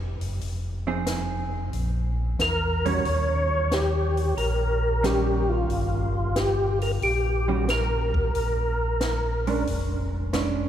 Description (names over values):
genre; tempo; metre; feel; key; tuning
soul jazz organ trio; 91 BPM; 4/4; swing 69% on 8ths; unclear; A4 = 440 Hz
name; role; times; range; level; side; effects
mellow tonewheel organ; bass; 0.0-10.7 s; F1 to E2; -26 LUFS; equal; chorus vibrato, slow rotary speaker
compact cocktail drum kit; drums; 0.2-10.5 s; hi-hat, kick drum, snare drum; -34 LUFS; equal; none
vintage hollow-body jazz guitar; accompaniment; 0.9-10.7 s; Eb3 to Ab4; -31 LUFS; right 5 dB; none
percussive tonewheel organ; melody; 2.4-9.6 s; F4 to Db5; -26 LUFS; left 1 dB; slow rotary speaker, chorus vibrato
room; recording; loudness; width
wet cathedral reverb, RT60 4.5 s; recorded in a church or concert hall; -22 LUFS; side -10 dB against mid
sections
0.0-10.7 A section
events
none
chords
0.4 Fm7; 1.7 Bbm; 3.1 Eb7; 8.3 Bb7#9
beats
| 0.41 1.07 1.73 2.39 | 3.06 3.72 4.38 5.04 | 5.70 6.37 7.03 7.69 | 8.35 9.01 9.67 10.33